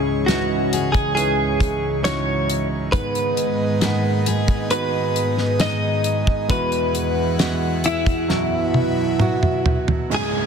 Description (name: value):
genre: pop ballad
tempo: 67 BPM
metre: 4/4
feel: straight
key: C# minor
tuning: A4 = 440 Hz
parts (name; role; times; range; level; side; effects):
- direct-recorded clean electric guitar; melody; 0.0-10.5 s; E4 to D#5; -22 LUFS; equal; lush chorus
- warm baby grand piano; accompaniment; 0.0-10.5 s; B1 to B4; -25 LUFS; right 8 dB; none
- airy breathy pad; sustained chords; 0.0-10.1 s; C#2 to F#5; -25 LUFS; left 1 dB; chorus
- picked steel-string acoustic guitar; arpeggios; 0.0-10.5 s; G#2 to G#4; -28 LUFS; left 6 dB; none
- damped 70s drum kit; drums; 0.3-10.1 s; hi-hat, kick drum, snare drum, toms; -22 LUFS; equal; none
- downlifter; sound effects; 10.1-10.5 s; none; -27 LUFS; equal; none
room: light reverb, small room ambience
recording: dense, heavily limited modern master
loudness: -18 LUFS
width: side -6 dB against mid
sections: 0.0-10.1 A section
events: drum fill 8.3-10.1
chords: 0.0 C#madd9; 2.9 G#m; 6.5 Eadd9; 8.3 Bsus4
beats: 0.28 1.16 2.04 | 2.93 3.81 4.70 5.59 | 6.49 7.39 8.29 9.20 | 10.11